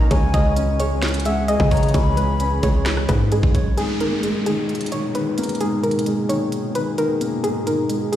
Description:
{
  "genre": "hip hop, trap",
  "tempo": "131 BPM",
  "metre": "4/4",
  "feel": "half-time",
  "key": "G# minor",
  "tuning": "A4 = 438 Hz",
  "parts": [
    { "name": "mellow hollow silver concert flute", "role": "second line", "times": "0.0-2.8 s", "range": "F#5 to B5", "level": "-29 LUFS", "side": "left 5 dB", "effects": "tape echo" },
    { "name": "dark baby grand piano", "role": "accompaniment", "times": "0.0-8.2 s", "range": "G#2 to C#5", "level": "-23 LUFS", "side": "left 1 dB", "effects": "low-pass filter" },
    { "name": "deep dark ambient pad", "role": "sustained chords", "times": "0.0-8.2 s", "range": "A#2 to G#4", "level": "-28 LUFS", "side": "equal", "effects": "chorus, built-in reverb" },
    { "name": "hard-hitting 808-style bass", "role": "bass", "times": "0.0-3.8 s", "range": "A#1 to C#3", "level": "-20 LUFS", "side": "equal", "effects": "none" },
    { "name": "soft round pluck", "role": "melody", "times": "0.1-8.2 s", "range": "G#4 to E5", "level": "-25 LUFS", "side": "equal", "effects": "chorus, low-pass filter, tape echo" },
    { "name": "trap drum kit", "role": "drums", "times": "0.1-8.2 s", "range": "finger snaps, hi-hat, kick drum, rim click, snare drum", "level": "-23 LUFS", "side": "equal", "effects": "none" },
    { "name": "downlifter and riser", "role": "sound effects", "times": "3.8-8.2 s", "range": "none", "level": "-30 LUFS", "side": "right 1 dB", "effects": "none" }
  ],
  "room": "little or no reverb",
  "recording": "played on a big sound system in a bare room, stone room reverb",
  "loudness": "-18 LUFS",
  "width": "side -11 dB against mid",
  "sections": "0.0-3.8 A section; 3.8-8.2 B section",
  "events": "none",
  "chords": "0.1 C#m; 3.8 G#madd9",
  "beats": "| 0.11 0.57 1.03 1.49 | 1.94 2.40 2.86 3.32 | 3.77 4.23 4.69 5.15 | 5.61 6.07 6.52 6.98 | 7.44 7.90"
}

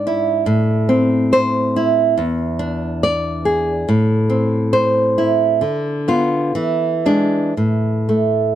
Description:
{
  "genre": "romantic piece for solo classical guitar",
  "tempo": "58-71 BPM",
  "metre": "2/4",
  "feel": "rubato",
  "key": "A minor",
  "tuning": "A4 = 438 Hz",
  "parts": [
    { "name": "nylon-string guitar", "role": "solo", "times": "0.0-8.6 s", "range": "E2 to D5", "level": "-15 LUFS", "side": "right 1 dB", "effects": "none" }
  ],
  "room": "light reverb",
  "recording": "dry, close 1970s-style studio recording",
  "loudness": "-15 LUFS",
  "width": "side -11 dB against mid",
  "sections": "0.0-8.6 A section",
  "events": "none",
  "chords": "0.5 Am; 2.2 E7; 3.9 Am; 5.6 Bdim/D; 6.6 E7; 7.6 N.C.",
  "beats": "| 0.47 1.32 | 2.19 3.04 | 3.89 4.75 | 5.64 6.57 | 7.57"
}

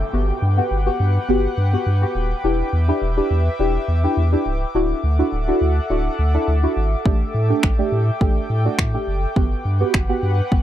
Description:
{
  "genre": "dance-pop",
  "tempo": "104 BPM",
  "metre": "4/4",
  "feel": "straight",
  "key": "unclear",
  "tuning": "A4 = 440 Hz",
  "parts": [
    { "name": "airy breathy pad", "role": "sustained chords", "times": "0.0-10.6 s", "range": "A4 to D6", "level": "-27 LUFS", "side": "left 1 dB", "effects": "chorus, sidechain pumping" },
    { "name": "warm sub bass", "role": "bass", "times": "0.0-10.6 s", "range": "C#1 to A2", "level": "-19 LUFS", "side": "equal", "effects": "sidechain pumping" },
    { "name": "downlifter", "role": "sound effects", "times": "0.0-2.4 s", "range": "none", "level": "-41 LUFS", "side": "equal", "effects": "none" },
    { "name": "deep mellow chord stab", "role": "accompaniment", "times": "0.1-10.6 s", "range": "A3 to A4", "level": "-22 LUFS", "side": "equal", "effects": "chorus, phaser, sidechain pumping" },
    { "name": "house drum kit", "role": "drums", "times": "7.1-10.6 s", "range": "finger snaps, kick drum", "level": "-18 LUFS", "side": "equal", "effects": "overdrive" }
  ],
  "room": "little or no reverb",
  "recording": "dry, close 1970s-style studio recording",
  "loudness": "-17 LUFS",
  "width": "side -12 dB against mid",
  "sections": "0.0-10.6 A section",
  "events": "none",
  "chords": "0.1 Gmaj7; 2.4 Em7; 4.7 Dadd9; 7.1 A7sus4; 9.4 Gmaj7",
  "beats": "| 0.13 0.71 1.29 1.86 | 2.44 3.02 3.59 4.17 | 4.75 5.33 5.90 6.48 | 7.06 7.63 8.21 8.79 | 9.36 9.94 10.52"
}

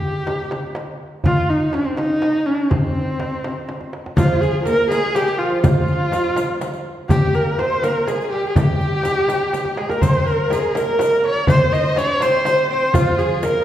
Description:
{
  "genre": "Persian modal ensemble",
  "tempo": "82 BPM (dotted quarters)",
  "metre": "6/8",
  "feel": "straight",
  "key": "C dastgah shur",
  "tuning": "A4 = 440 Hz",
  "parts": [
    { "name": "warm kamancheh", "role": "melody", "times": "0.0-13.6 s", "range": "C4 to Eb5", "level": "-20 LUFS", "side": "equal", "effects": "none" },
    { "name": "tombak", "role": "percussion", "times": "0.0-13.5 s", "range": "none", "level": "-25 LUFS", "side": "right 1 dB", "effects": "none" },
    { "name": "frame drum", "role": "percussion", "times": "0.3-13.5 s", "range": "none", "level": "-22 LUFS", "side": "left 1 dB", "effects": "none" },
    { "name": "oud", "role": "second line", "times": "4.2-13.6 s", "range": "F3 to Eb4", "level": "-26 LUFS", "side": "right 3 dB", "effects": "none" },
    { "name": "warm symphonic violin section", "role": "second line", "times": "4.2-13.6 s", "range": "F4 to Db5+45c", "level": "-25 LUFS", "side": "left 1 dB", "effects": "slapback echo" },
    { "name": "riq", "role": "percussion", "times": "4.2-13.5 s", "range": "none", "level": "-33 LUFS", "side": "left 2 dB", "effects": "none" }
  ],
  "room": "wet recital hall reverb, RT60 1.8 s",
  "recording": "heard from further back in the room",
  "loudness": "-16 LUFS",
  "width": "side -11 dB against mid",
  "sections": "0.0-4.2 A section; 4.2-13.6 B section",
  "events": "drum fill 3.7-4.2, 9.5-10.0",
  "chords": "none",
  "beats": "0.52 | 1.25 1.99 | 2.72 3.45 | 4.18 4.91 | 5.64 6.37 | 7.10 7.83 | 8.56 9.29 | 10.03 10.76 | 11.48 12.21 | 12.95"
}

